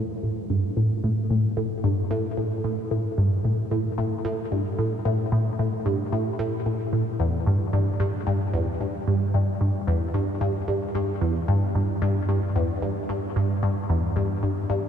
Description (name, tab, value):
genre	ambient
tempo	112 BPM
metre	4/4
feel	straight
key	unclear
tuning	A4 = 445 Hz
part	resonant blip pluck	solo	0.0-14.9 s	E2 to A2	-22 LUFS	equal	phaser, lush chorus, cassette tape, ping-pong delay
room	wet huge ambient reverb, RT60 7.3 s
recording	dark, warm production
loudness	-22 LUFS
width	side -8 dB against mid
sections	0.0-14.9 A section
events	none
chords	none